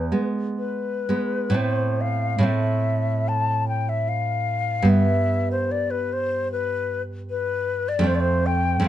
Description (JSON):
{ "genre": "romantic duo for flute and classical guitar", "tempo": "60-78 BPM", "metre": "4/4", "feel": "rubato", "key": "A minor", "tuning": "A4 = 440 Hz", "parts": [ { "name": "mellow hollow silver concert flute", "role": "melody", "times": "0.0-8.9 s", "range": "B4 to A5", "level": "-25 LUFS", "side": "left 4 dB", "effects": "plate reverb" }, { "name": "nylon-string guitar", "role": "accompaniment", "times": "0.0-8.9 s", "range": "E2 to C4", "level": "-23 LUFS", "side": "right 2 dB", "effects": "none" } ], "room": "light reverb", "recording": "nothing above 10.8 kHz", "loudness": "-21 LUFS", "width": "side -12 dB against mid", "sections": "0.0-1.6 A section; 1.6-8.9 A section", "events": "none", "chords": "0.0 E (rootless); 1.6 Am; 4.9 G; 8.1 F" }